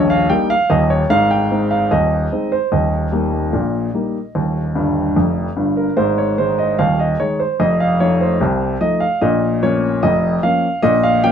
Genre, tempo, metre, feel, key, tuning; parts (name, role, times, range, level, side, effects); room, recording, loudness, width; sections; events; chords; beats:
ragtime piano; 74 BPM; 2/4; straight; Ab major; A4 = 440 Hz
warm upright piano; solo; 0.0-11.3 s; Eb1 to G5; -14 LUFS; equal
moderate club reverb, RT60 0.7 s; dark, warm production; -14 LUFS; side -8 dB against mid
0.0-11.3 A section
upright piano fill 4.8-6.0
0.0 Eb; 1.1 Ab; 2.7 Eb; 6.0 Ab5; 7.6 F7; 9.2 Bbm
0.29 | 1.10 1.91 | 2.72 3.53 | 4.34 5.16 | 5.97 6.79 | 7.60 8.41 | 9.22 10.03 | 10.83